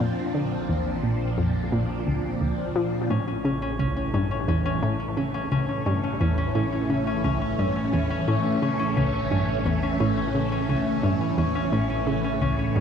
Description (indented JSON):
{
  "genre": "ambient, sequencer-driven space music",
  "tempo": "87 BPM",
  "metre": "4/4",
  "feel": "straight",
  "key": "unclear",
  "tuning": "A4 = 440 Hz",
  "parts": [
    { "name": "phased string machine", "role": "sustained chords", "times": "0.0-12.8 s", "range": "A2 to D4", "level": "-27 LUFS", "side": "right 1 dB", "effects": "ensemble chorus, phaser" },
    { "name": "analog pluck", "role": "riff", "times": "0.0-12.8 s", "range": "C#2 to F3", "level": "-25 LUFS", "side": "equal", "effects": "chorus, tape echo" },
    { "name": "fat analog bass", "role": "bass", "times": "0.0-12.8 s", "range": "A1 to Bb1", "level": "-36 LUFS", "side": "equal", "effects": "none" },
    { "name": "concert harp", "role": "arpeggios", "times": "3.1-12.8 s", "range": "C#4", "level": "-30 LUFS", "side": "left 4 dB", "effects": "auto-pan, tape echo" }
  ],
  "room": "wet cathedral reverb, RT60 5.4 s",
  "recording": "in a vast, echoing space, cassette tape",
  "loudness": "-22 LUFS",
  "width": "side -7 dB against mid",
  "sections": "0.0-12.8 A section",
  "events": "none",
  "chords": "0.0 Bb; 3.1 A"
}